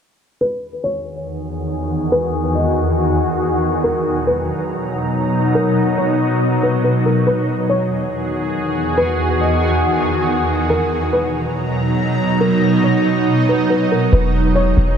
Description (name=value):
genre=hip hop, atmospheric cloud-rap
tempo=140 BPM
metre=4/4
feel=half-time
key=unclear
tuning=A4 = 440 Hz
part: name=felt-muted upright piano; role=melody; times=0.4-15.0 s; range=A#4 to D#5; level=-22 LUFS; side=equal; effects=low-pass filter, digital delay
part: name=shimmering ambient pad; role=sustained chords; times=1.2-15.0 s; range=E2 to A#5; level=-16 LUFS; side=equal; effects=chorus, built-in reverb, low-pass filter
part: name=warm 808-style bass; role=bass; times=14.1-15.0 s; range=E1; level=-14 LUFS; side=equal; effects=none
room=moderate huge ambient reverb, RT60 8.6 s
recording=none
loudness=-15 LUFS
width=side -7 dB against mid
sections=0.4-14.1 A section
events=filter sweep 0.4-14.1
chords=0.4 Emaj9; 3.8 Bmaj7; 7.3 Emaj9; 10.7 Bmaj7; 14.1 Emaj9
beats=| 0.41 0.84 1.27 1.70 | 2.13 2.55 2.98 3.41 | 3.84 4.27 4.70 5.13 | 5.55 5.98 6.41 6.84 | 7.27 7.70 8.13 8.55 | 8.98 9.41 9.84 10.27 | 10.70 11.13 11.55 11.98 | 12.41 12.84 13.27 13.70 | 14.13 14.55